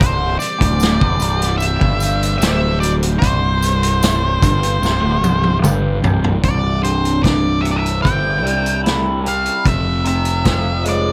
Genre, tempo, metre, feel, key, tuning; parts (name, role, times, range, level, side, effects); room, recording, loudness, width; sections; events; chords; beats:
psychedelic rock; 74 BPM; 4/4; straight; C major; A4 = 442 Hz
octave-fuzz lead guitar; melody; 0.0-11.1 s; C5 to G5; -23 LUFS; equal; distortion, slapback echo
combo organ; sustained chords; 0.0-6.4 s; E3 to C5; -31 LUFS; equal
electric guitar through a small old amp; riff; 0.0-11.1 s; C2 to E4; -24 LUFS; equal; phaser, double-tracked
fuzz picked electric bass; bass; 0.0-11.1 s; C1 to C2; -22 LUFS; equal; overdrive
vintage drum kit; drums; 0.0-11.0 s; hi-hat, kick drum, snare drum, toms; -21 LUFS; equal
tambourine; percussion; 0.4-6.1 s; -34 LUFS; equal
little or no reverb; -16 LUFS; mono
0.0-6.4 A section; 6.4-11.1 B section
drum fill 4.8-6.4
0.0 C; 9.7 Fm
0.80 1.60 2.41 | 3.21 4.01 4.82 5.62 | 6.43 7.24 8.04 8.85 | 9.65 10.46